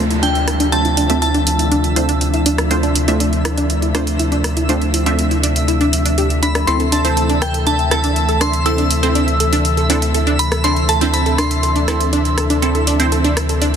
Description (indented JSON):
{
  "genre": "progressive house",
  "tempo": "121 BPM",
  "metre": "4/4",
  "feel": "straight",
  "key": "D minor",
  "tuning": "A4 = 441 Hz",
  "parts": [
    { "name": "glassy synth bell", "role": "melody", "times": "0.0-2.4, 6.4-13.8 s", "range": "G5 to E6", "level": "-21 LUFS", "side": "equal", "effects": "chorus, phaser, digital delay" },
    { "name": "airy breathy pad", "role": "sustained chords", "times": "0.0-13.8 s", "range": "C3 to E5", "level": "-23 LUFS", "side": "equal", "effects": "chorus" },
    { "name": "wide unison pluck", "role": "stabs", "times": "0.0-13.8 s", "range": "A3 to E5", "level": "-22 LUFS", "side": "right 2 dB", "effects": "phaser, digital delay" },
    { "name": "round analog bass", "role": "bass", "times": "0.0-13.8 s", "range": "D2", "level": "-18 LUFS", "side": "equal", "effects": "none" },
    { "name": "downlifter", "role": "sound effects", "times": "0.0-2.7 s", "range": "none", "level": "-29 LUFS", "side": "left 1 dB", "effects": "none" },
    { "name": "twinkling granular texture", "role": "texture", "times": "0.0-13.8 s", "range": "E5 to E6", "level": "-28 LUFS", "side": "left 1 dB", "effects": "built-in reverb" },
    { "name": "wide unison pluck", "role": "arpeggios", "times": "0.1-13.7 s", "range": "D4 to A4", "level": "-21 LUFS", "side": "equal", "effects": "digital delay" },
    { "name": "pop drum kit", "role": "drums", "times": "0.1-13.8 s", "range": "hi-hat, rim click", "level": "-23 LUFS", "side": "right 1 dB", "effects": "soft clipping on snare" }
  ],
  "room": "moderate huge ambient reverb, RT60 5.3 s",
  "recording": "dense, heavily limited modern master",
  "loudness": "-13 LUFS",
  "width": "side -8 dB against mid",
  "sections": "0.0-13.8 A section",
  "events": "filter sweep on synth pluck 0.0-13.8",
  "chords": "0.0 Dm7; 6.7 Am/D",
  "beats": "0.23 | 0.72 1.22 1.72 2.21 | 2.71 3.20 3.70 4.20 | 4.69 5.19 5.68 6.18 | 6.67 7.17 7.67 8.16 | 8.66 9.15 9.65 10.14 | 10.64 11.14 11.63 12.13 | 12.62 13.12 13.62"
}